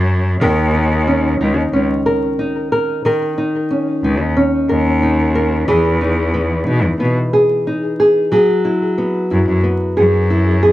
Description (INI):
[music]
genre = folktronica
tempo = 91 BPM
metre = 4/4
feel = straight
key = unclear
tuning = A4 = 440 Hz
[part]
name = clear cello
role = bass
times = 0.0-10.7 s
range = C#2 to B2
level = -16 LUFS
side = equal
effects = none
[part]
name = nylon-string guitar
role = arpeggios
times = 0.4-10.7 s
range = D#3 to A#4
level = -15 LUFS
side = equal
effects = vintage 12-bit sampler grit, ping-pong delay
[sound]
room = moderate studio reverb, RT60 0.5 s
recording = vinyl crackle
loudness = -13 LUFS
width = side -15 dB against mid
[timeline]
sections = 0.0-10.7 A section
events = none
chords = 0.4 D#5; 5.7 Emaj7; 8.3 F#9sus4